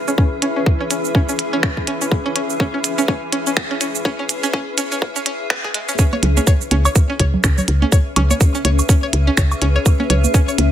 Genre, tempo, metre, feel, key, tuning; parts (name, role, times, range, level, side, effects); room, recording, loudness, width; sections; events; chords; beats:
minimal techno; 124 BPM; 4/4; swing 58% on 16ths; C# minor; A4 = 443 Hz
granular cloud pad; texture; 0.0-10.7 s; C#4 to E5; -25 LUFS; left 2 dB; built-in reverb, sidechain pumping
swarming drone; texture; 0.0-6.0 s; E3 to E4; -31 LUFS; left 1 dB; built-in reverb, sidechain pumping
string-like resonator pluck; riff; 0.1-10.5 s; G#3 to C#5; -23 LUFS; equal; chorus, sidechain pumping, tape echo
minimal click drum kit; drums; 0.1-10.7 s; finger snaps, hi-hat, shaker; -21 LUFS; right 3 dB; high-pass filter on hats, high-pass filter on perc, high-pass filter on snare
electronic kick drum; drums; 0.2-10.5 s; -15 LUFS; equal
congas and woodblock; percussion; 6.1-10.7 s; -22 LUFS; right 4 dB; tape echo
woody FM bass; bass; 6.2-10.7 s; C#2; -16 LUFS; equal; sidechain pumping
light reverb, digital ambience; high-pass filter; -15 LUFS; side -11 dB against mid
0.0-6.0 A section; 6.0-10.7 B section
build-up 0.0-6.0; filter sweep on synth pluck 0.0-6.0; filter sweep 0.0-6.0; drop 6.0-10.7
0.0 C#m7
| 0.18 0.66 1.15 1.63 | 2.12 2.60 3.08 3.57 | 4.05 4.54 5.02 5.50 | 5.99 6.47 6.95 7.44 | 7.92 8.41 8.89 9.37 | 9.86 10.34